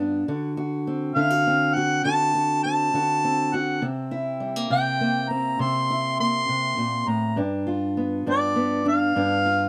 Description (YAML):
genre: acoustic country blues, solo or duo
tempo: 68 BPM (dotted quarters)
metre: 12/8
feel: straight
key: unclear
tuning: A4 = 442 Hz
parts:
  - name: fingerpicked steel-string acoustic guitar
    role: accompaniment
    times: 0.0-9.7 s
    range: G2 to F#4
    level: -27 LUFS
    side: equal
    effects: none
  - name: mellow harmonica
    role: melody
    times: 1.2-9.7 s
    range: D5 to C6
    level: -25 LUFS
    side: equal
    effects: none
room: moderate booth ambience, RT60 0.2 s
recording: none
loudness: -23 LUFS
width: mono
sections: 0.0-9.7 A section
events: none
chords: 0.3 D7; 3.8 C7; 7.4 G7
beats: | 0.27 1.16 2.04 2.93 | 3.82 4.71 5.60 6.49 | 7.38 8.27 9.16